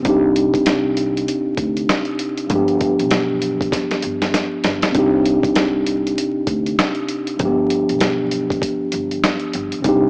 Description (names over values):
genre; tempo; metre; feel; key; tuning
hip hop, boom-bap hip-hop; 98 BPM; 4/4; swing 60% on 16ths; C harmonic minor; A4 = 440 Hz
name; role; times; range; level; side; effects
mellow tine electric piano; accompaniment; 0.0-10.1 s; G2 to G4; -20 LUFS; equal; high-pass filter, low-pass filter, cassette tape
dusty soul sampler-style drum kit; drums; 0.0-10.0 s; hi-hat, kick drum, rim click, snare drum; -23 LUFS; equal; cassette tape
upright bass; bass; 0.1-10.1 s; G1 to D2; -30 LUFS; equal; transformer saturation
room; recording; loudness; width
moderate spring reverb, RT60 2.6 s; home recording on cassette, vinyl crackle, small speaker sound; -19 LUFS; mono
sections
0.0-4.9 A section; 4.9-10.1 A section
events
drum fill 3.7-4.9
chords
0.1 Cmadd9; 2.5 G7; 4.9 Cmadd9; 7.4 G7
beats
| 0.05 0.66 1.27 1.89 | 2.50 3.11 3.72 4.34 | 4.95 5.56 6.17 6.79 | 7.40 8.01 8.62 9.23 | 9.85